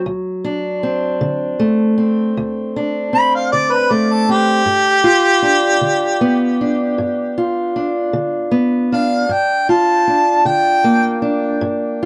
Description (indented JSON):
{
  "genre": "acoustic country blues, solo or duo",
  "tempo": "52 BPM (dotted quarters)",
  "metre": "12/8",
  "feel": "straight",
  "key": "unclear",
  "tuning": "A4 = 439 Hz",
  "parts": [
    { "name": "fingerpicked steel-string acoustic guitar", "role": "accompaniment", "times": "0.0-12.1 s", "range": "D2 to F4", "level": "-19 LUFS", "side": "equal", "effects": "none" },
    { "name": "mellow harmonica", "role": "melody", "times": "3.1-11.2 s", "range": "G4 to B5", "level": "-17 LUFS", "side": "equal", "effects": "tape echo" }
  ],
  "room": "light reverb",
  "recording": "dry, close 1970s-style studio recording",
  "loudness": "-16 LUFS",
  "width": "mono",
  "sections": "0.0-12.1 A section",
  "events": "none",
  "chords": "0.0 D7; 4.7 G7; 9.3 Gm7",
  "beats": "| 0.03 1.19 2.35 3.50 | 4.66 5.82 6.97 8.13 | 9.29 10.45 11.61"
}